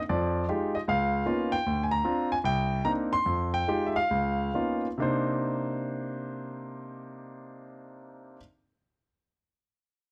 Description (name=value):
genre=solo jazz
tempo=130-153 BPM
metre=4/4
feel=swing 66% on 8ths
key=C minor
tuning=A4 = 442 Hz
part: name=warm concert grand piano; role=solo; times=0.1-8.4 s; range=C2 to C6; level=-29 LUFS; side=equal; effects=none
room=light reverb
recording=close, detailed microphones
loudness=-28 LUFS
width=mono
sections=0.0-5.0 A section; 5.0-8.7 B section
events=slowing down 1.7-5.0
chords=0.1 Fm9; 0.9 Db13; 1.7 Bb13/D; 2.4 Cm9; 3.3 Fm9; 4.1 Db13; 5.0 Cm9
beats=| 0.08 0.48 0.87 1.26 | 1.66 2.05 2.45 2.85 | 3.26 3.68 4.11 4.55 | 5.00 5.46 5.92 6.38 | 6.85 7.31 7.77 8.23